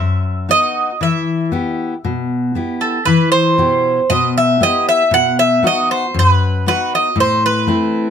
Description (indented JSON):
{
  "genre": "greek folk, Greek bouzouki band",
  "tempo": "117 BPM",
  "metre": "4/4",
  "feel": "straight",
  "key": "E harmonic minor",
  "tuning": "A4 = 440 Hz",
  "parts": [
    { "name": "Greek bouzouki", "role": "melody", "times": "0.0-8.1 s", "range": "A4 to F#5", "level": "-14 LUFS", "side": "right 2 dB", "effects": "none" },
    { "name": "fingerpicked steel-string acoustic guitar", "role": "accompaniment", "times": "0.0-8.1 s", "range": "F#2 to G4", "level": "-17 LUFS", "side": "left 3 dB", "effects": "none" }
  ],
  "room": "moderate small room ambience, RT60 0.5 s",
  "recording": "close, detailed microphones",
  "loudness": "-13 LUFS",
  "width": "side -8 dB against mid",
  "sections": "0.0-3.1 A section; 3.1-8.1 B section",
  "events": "none",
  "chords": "0.0 B; 1.0 Em; 5.1 B; 7.2 Am",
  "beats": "0.49 | 1.00 1.52 2.04 2.55 | 3.06 3.58 4.09 4.61 | 5.12 5.63 6.15 6.66 | 7.18 7.69"
}